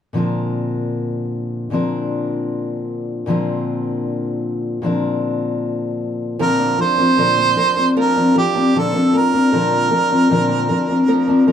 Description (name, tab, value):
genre	pop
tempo	77 BPM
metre	4/4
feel	straight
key	Bb major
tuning	A4 = 440 Hz
part	fingerpicked steel-string acoustic guitar	accompaniment	0.1-11.5 s	Bb2 to Bb4	-18 LUFS	left 2 dB	none
part	clear harmonica	melody	6.4-11.5 s	G4 to C5	-17 LUFS	right 4 dB	none
part	flamenco guitar	arpeggios	6.4-11.5 s	F3 to Bb4	-24 LUFS	right 2 dB	none
room	wet small room reverb, RT60 0.5 s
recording	band playing live in one room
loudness	-16 LUFS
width	side -8 dB against mid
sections	0.1-6.4 A section; 6.4-11.5 B section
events	none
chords	0.1 Bbadd9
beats	| 0.15 0.93 1.71 2.49 | 3.27 4.05 4.84 5.62 | 6.40 7.18 7.96 8.74 | 9.53 10.31 11.09